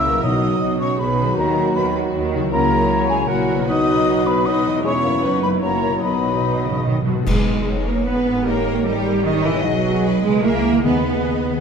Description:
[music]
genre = classical, dramatic, fast romantic movement for symphony orchestra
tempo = 142-159 BPM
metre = 3/4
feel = rubato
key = B major, G# minor from 7.3 s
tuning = A4 = 442 Hz
[part]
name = rich studio violin section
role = melody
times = 0.0-11.6 s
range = D#4 to D#5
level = -32 LUFS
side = left 5 dB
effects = none
[part]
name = concert flute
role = second line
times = 0.0-6.8 s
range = F#5 to E6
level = -22 LUFS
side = left 1 dB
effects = none
[part]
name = mellow clarinet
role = second line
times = 0.0-7.1 s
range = D#4 to E4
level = -28 LUFS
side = left 1 dB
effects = none
[part]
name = warm studio violin section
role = second line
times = 0.0-11.6 s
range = B3 to E5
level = -29 LUFS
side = left 2 dB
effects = none
[part]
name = dark bassoon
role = accompaniment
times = 0.0-7.0 s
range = F#3 to B3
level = -26 LUFS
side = right 2 dB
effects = none
[part]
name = rich symphonic viola section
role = accompaniment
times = 0.0-11.6 s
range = D#4 to D#5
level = -28 LUFS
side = right 3 dB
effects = none
[part]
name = mellow French horn section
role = sustained chords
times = 0.0-11.6 s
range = F#3 to G#4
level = -26 LUFS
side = left 3 dB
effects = none
[part]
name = concert harp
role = arpeggios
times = 0.0-11.6 s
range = E2 to G#4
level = -26 LUFS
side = left 7 dB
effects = none
[part]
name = rich symphonic cello section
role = bass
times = 0.0-11.6 s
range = E2 to B3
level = -22 LUFS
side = right 4 dB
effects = none
[part]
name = rich symphonic double bass section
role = bass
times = 0.0-11.6 s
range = E1 to D#2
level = -27 LUFS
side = right 5 dB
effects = none
[part]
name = timpani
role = percussion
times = 0.2-0.8, 6.0-7.2, 10.9-11.4 s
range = B2 to D#3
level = -27 LUFS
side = left 1 dB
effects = none
[part]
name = cymbal swell, clash cymbals and concert bass drum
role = percussion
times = 4.8-8.0 s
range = none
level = -26 LUFS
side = equal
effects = none
[sound]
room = moderate concert hall reverb, RT60 1.8 s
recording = none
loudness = -16 LUFS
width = side -6 dB against mid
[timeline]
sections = 0.0-7.3 A section; 7.3-11.6 B section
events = timpani fill 6.0-7.3; band accent 7.3-7.7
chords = 0.2 B; 1.4 D#m; 2.5 F#7/C#; 3.7 B; 4.9 C#m/E; 5.2 B/F#; 5.6 F#7; 6.0 B; 7.3 G#m; 8.5 D#7/G#; 9.6 G#m/B; 10.4 A#m7b5/C#; 10.9 G#m/D#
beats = | 0.23 0.61 1.00 | 1.38 1.76 2.14 | 2.52 2.90 3.29 | 3.69 4.08 4.47 | 4.85 5.24 5.63 | 6.04 6.44 6.85 | 7.26 7.66 8.06 | 8.46 8.86 9.25 | 9.64 10.04 10.44 | 10.86 11.28

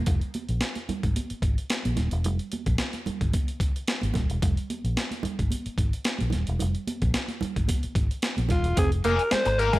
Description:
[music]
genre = funk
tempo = 110 BPM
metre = 4/4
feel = straight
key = F minor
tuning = A4 = 440 Hz
[part]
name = semi-hollow electric guitar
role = riff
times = 0.0, 8.8-9.8 s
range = Ab3 to C4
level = -31 LUFS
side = right 6 dB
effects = none
[part]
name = vintage muted fingered electric bass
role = bass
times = 0.0-9.7 s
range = Eb1 to Bb1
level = -27 LUFS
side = equal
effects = none
[part]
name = breakbeat sampler-style drum kit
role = drums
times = 0.1-9.8 s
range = hi-hat, kick drum, snare drum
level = -27 LUFS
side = equal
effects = none
[part]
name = congas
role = percussion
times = 0.1-8.6 s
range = none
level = -33 LUFS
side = right 4 dB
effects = none
[part]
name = breathy alto saxophone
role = melody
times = 8.5-9.8 s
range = F4 to C5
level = -25 LUFS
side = left 1 dB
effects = none
[part]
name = biting overdriven guitar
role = accompaniment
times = 9.0-9.8 s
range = Bb3 to Bb4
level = -28 LUFS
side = left 7 dB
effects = wah
[sound]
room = digital ambience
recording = none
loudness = -24 LUFS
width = side -18 dB against mid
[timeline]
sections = 0.1-8.8 A section; 8.8-9.8 B section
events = none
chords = 0.1 Fm7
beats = | 0.07 0.61 1.16 1.70 | 2.25 2.79 3.33 3.88 | 4.42 4.97 5.51 6.06 | 6.60 7.14 7.69 8.23 | 8.77 9.32

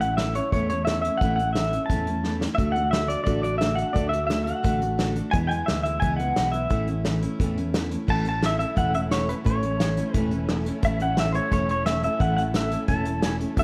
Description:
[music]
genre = honky-tonk and classic country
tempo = 175 BPM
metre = 4/4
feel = straight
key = A major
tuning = A4 = 440 Hz
[part]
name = pedal steel guitar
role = melody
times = 0.0-13.6 s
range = B4 to A5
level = -29 LUFS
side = equal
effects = none
[part]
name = picked steel-string acoustic guitar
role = accompaniment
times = 0.0-13.6 s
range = E2 to F#4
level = -30 LUFS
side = equal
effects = none
[part]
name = fingered electric bass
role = bass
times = 0.0-13.6 s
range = E1 to E2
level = -32 LUFS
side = equal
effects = none
[part]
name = unplugged drum kit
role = drums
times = 0.0-13.6 s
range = crash cymbal, hi-hat, kick drum, snare drum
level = -30 LUFS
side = equal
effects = none
[part]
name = dark symphonic violin section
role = sustained chords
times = 8.1-13.6 s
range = C#4 to A4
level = -41 LUFS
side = equal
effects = none
[sound]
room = moderate large studio reverb, RT60 1.4 s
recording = worn, warbling old tape, cassette tape, warbly pitch drift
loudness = -24 LUFS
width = mono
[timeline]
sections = 0.0-8.1 A section; 8.1-13.6 A section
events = drum fill 2.2-2.6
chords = 0.0 A; 2.6 D; 5.3 E; 6.7 A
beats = 0.18 0.52 0.87 | 1.21 1.55 1.90 2.24 | 2.59 2.93 3.27 3.62 | 3.96 4.30 4.65 4.99 | 5.34 5.68 6.02 6.37 | 6.71 7.05 7.40 7.74 | 8.08 8.43 8.77 9.11 | 9.45 9.80 10.14 10.48 | 10.83 11.17 11.51 11.85 | 12.20 12.54 12.88 13.22 | 13.57

